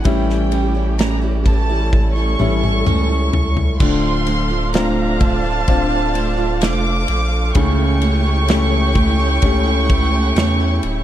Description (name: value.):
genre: pop ballad.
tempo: 64 BPM.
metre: 4/4.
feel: straight.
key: D harmonic minor.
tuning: A4 = 440 Hz.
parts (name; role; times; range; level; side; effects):
warm studio violin section; second line; 0.0-11.0 s; G5 to D6; -24 LUFS; right 1 dB; none.
bright upright piano; accompaniment; 0.0-11.0 s; C#3 to G4; -23 LUFS; left 6 dB; none.
picked steel-string acoustic guitar; arpeggios; 0.0-11.0 s; A2 to G4; -23 LUFS; right 5 dB; none.
saturated sub bass; bass; 0.0-11.0 s; D1 to E2; -19 LUFS; equal; none.
warm studio string section; sustained chords; 0.1-11.0 s; A3 to G5; -25 LUFS; right 1 dB; none.
natural country drum kit; drums; 0.1-11.0 s; crash cymbal, kick drum, ride cymbal, snare drum, toms; -19 LUFS; equal; none.
room: small room ambience.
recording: dark, warm production.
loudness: -14 LUFS.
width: side -12 dB against mid.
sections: 0.0-3.8 A section; 3.8-11.0 A section.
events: upright piano solo 0.0-3.8; drum fill 1.9-3.8.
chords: 0.1 A7; 3.8 Dm7; 7.6 A7/C#.